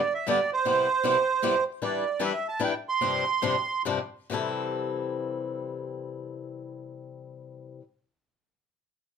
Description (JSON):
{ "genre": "jazz", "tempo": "132-155 BPM", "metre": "3/4", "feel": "swing 62% on 8ths", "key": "C major", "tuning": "A4 = 438 Hz", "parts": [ { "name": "accordion", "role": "melody", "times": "0.0-3.8 s", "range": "C5 to C6", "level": "-25 LUFS", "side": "right 6 dB", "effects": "light tremolo tuning, plate reverb" }, { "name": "picked swing-style acoustic guitar", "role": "accompaniment", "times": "0.3-7.8 s", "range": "G2 to B4", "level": "-30 LUFS", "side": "left 6 dB", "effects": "none" } ], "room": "wet studio ambience, RT60 0.5 s", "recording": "none", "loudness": "-25 LUFS", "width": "side -7 dB against mid", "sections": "0.0-1.8 A section; 1.8-4.3 B section; 4.3-7.0 C section", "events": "slowing down 1.8-4.3", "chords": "0.0 G; 0.7 Cmaj7; 1.8 Em7; 3.0 G7sus4; 4.3 C6", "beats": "0.27 | 0.66 1.04 1.43 | 1.82 2.21 2.60 | 3.00 3.42 3.85 | 4.29 4.75 5.20 | 5.66 6.12 6.57" }